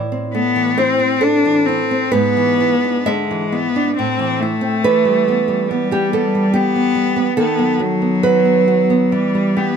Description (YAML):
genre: romantic duo for cello and classical guitar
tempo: 61-72 BPM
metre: 3/4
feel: rubato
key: unclear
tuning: A4 = 440 Hz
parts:
  - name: nylon-string guitar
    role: accompaniment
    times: 0.0-9.8 s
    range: G#2 to E5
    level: -16 LUFS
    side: right 4 dB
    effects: none
  - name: clear cello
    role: melody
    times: 0.3-9.8 s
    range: F#3 to D4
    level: -17 LUFS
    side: left 4 dB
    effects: none
room: light reverb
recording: none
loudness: -14 LUFS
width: side -7 dB against mid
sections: 0.0-9.8 A section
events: none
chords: 0.0 Am; 2.1 E7/G#; 4.0 Am; 4.8 Em; 7.4 B7/D#; 9.1 Em